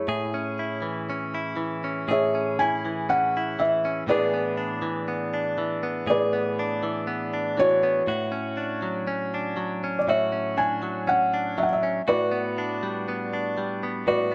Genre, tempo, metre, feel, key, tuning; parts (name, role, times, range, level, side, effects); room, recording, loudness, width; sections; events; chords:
acoustic folk-pop ballad; 60 BPM; 4/4; straight; A major; A4 = 438 Hz
felt-muted upright piano; melody; 0.0-14.3 s; E4 to G#5; -28 LUFS; equal; slapback echo
direct-recorded clean electric guitar; accompaniment; 0.0-14.3 s; A2 to G#4; -30 LUFS; equal
wet large studio reverb, RT60 1.3 s; nothing above 10.4 kHz; -26 LUFS; mono
0.1-14.3 A section
0.1 Amaj7; 4.1 E7/A; 8.1 Dmaj7/A; 12.1 Gmaj7/A